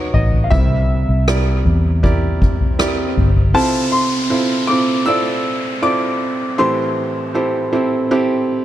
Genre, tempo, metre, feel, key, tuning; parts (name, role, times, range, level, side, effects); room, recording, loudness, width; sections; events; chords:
pop ballad; 79 BPM; 4/4; straight; F major from 3.6 s; A4 = 436 Hz
clear baby grand piano; melody; 0.0-8.6 s; C#5 to E6; -21 LUFS; left 2 dB; dub echo
felt-muted upright piano; accompaniment; 0.0-8.6 s; A2 to D5; -18 LUFS; right 2 dB
vintage muted fingered electric bass; bass; 0.0-3.5 s; G1 to E2; -16 LUFS; equal
swell and downlifter; sound effects; 2.4-8.6 s; -26 LUFS; equal
soft-mallet drum kit; drums; 0.1-3.5 s; kick drum, rim click, toms; -18 LUFS; left 1 dB
little or no reverb; echo-heavy mix; -14 LUFS; side -12 dB against mid
0.0-3.6 A section; 3.6-8.6 B section
swell 2.4-3.6
0.0 Badd9; 0.5 C7; 3.6 Fmaj7; 6.6 Am7